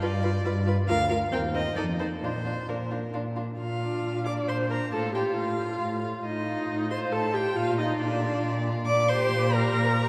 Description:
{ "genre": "quick classical-period movement for string quartet", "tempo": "136 BPM", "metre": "3/4", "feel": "straight", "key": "Bb major", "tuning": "A4 = 440 Hz", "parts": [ { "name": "rich violin", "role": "melody", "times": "0.0-10.1 s", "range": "Bb4 to D6", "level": "-34 LUFS", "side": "equal", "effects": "none" }, { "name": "rich violin", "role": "second line", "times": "0.0-10.1 s", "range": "D4 to B4", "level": "-37 LUFS", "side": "equal", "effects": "none" }, { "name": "warm viola", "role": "accompaniment", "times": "0.0-10.1 s", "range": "C4 to D5", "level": "-32 LUFS", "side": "equal", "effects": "none" }, { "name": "dark cello", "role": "bass", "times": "0.0-10.1 s", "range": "D2 to Bb2", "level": "-32 LUFS", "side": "equal", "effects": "none" } ], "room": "wet church reverb, RT60 3.1 s", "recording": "none", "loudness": "-27 LUFS", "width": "mono", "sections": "0.0-3.6 A section; 3.6-10.1 B section", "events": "none", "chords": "0.0 G7; 0.9 Bb/D; 1.3 Cm7/Eb; 1.8 F7(no3); 2.2 Bb; 4.9 F/A; 7.6 Bb; 8.9 Gm/Bb", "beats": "0.02 0.45 | 0.89 1.32 1.77 | 2.23 2.69 3.15 | 3.60 4.05 4.49 | 4.94 5.38 5.82 | 6.26 6.70 7.13 | 7.57 8.01 8.44 | 8.88 9.33 9.77" }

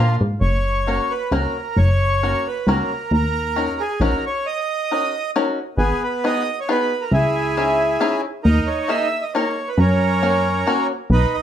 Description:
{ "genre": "musette waltz", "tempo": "135 BPM", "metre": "3/4", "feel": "straight", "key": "Eb minor, G# minor from 5.8 s", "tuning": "A4 = 440 Hz", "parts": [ { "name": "accordion", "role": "melody", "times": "0.0-11.4 s", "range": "B3 to E5", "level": "-21 LUFS", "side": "right 2 dB", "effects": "plate reverb" }, { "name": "bluegrass banjo", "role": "accompaniment", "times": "0.0-10.9 s", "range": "Bb3 to Bb4", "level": "-23 LUFS", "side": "left 3 dB", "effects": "none" }, { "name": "plucky analog bass", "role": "bass", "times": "0.0-11.3 s", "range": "Gb1 to Bb2", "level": "-18 LUFS", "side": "equal", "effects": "none" } ], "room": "wet small room reverb, RT60 0.5 s", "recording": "heard from further back in the room", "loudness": "-17 LUFS", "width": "side -10 dB against mid", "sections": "0.0-5.8 A section; 5.8-11.4 B section", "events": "none", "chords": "0.4 Gb; 3.1 Ebm7; 5.8 G#m7; 7.1 C#madd9; 8.5 D#sus4; 9.8 F#", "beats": "| 0.43 0.88 1.32 | 1.77 2.22 2.67 | 3.11 3.56 4.00 | 4.44 4.89 5.34 | 5.79 6.24 6.68 | 7.13 7.57 8.01 | 8.46 8.90 9.34 | 9.78 10.22 10.67 | 11.12" }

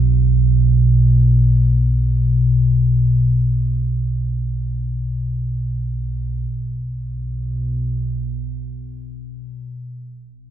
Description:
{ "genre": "ambient", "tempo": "free time", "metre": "none", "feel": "none", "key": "unclear", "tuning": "A4 = 440 Hz", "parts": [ { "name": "deep rumbling drone", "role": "solo", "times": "0.0-9.6 s", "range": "B1 to B2", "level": "-16 LUFS", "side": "equal", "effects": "built-in reverb, ping-pong delay" } ], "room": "moderate huge ambient reverb, RT60 8.2 s", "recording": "in a vast, echoing space", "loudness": "-16 LUFS", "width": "side -10 dB against mid", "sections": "0.0-6.5 A section; 6.5-10.5 B section", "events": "none", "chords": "none", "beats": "free time" }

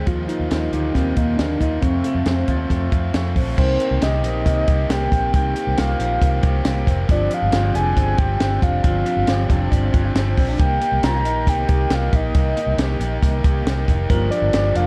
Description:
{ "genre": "jangly indie pop", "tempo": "137 BPM", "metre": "4/4", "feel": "straight", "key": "C minor", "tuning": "A4 = 445 Hz", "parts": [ { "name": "biting overdriven guitar", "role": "accompaniment", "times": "0.0-14.9 s", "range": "F2 to G4", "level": "-31 LUFS", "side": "equal", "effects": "none" }, { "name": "electric guitar through a small old amp", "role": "arpeggios", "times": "0.0-14.9 s", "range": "Eb3 to G4", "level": "-30 LUFS", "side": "equal", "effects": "spring reverb" }, { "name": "vintage muted fingered electric bass", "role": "bass", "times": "0.0-14.9 s", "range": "F1 to F2", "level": "-24 LUFS", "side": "equal", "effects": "none" }, { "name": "soft octave-layered synth lead", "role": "melody", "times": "0.1-14.9 s", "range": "Bb3 to Bb5", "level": "-25 LUFS", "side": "equal", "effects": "chorus, plate reverb" }, { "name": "compact cocktail drum kit", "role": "drums", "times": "0.1-14.9 s", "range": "crash cymbal, hi-hat, kick drum, snare drum", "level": "-23 LUFS", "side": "equal", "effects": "none" } ], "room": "light reverb", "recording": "dark, warm production", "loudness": "-19 LUFS", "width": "mono", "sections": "0.0-3.6 A section; 3.6-14.9 B section", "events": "none", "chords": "0.1 Ebadd9; 1.8 F; 3.6 Cm7; 7.1 G7sus4; 10.6 Cm7; 14.1 Gm7", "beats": "| 0.07 0.51 0.95 1.39 | 1.83 2.27 2.71 3.15 | 3.58 4.02 4.46 4.90 | 5.34 5.78 6.21 6.65 | 7.09 7.53 7.97 8.40 | 8.84 9.28 9.72 10.16 | 10.60 11.03 11.47 11.91 | 12.35 12.79 13.22 13.66 | 14.10 14.54" }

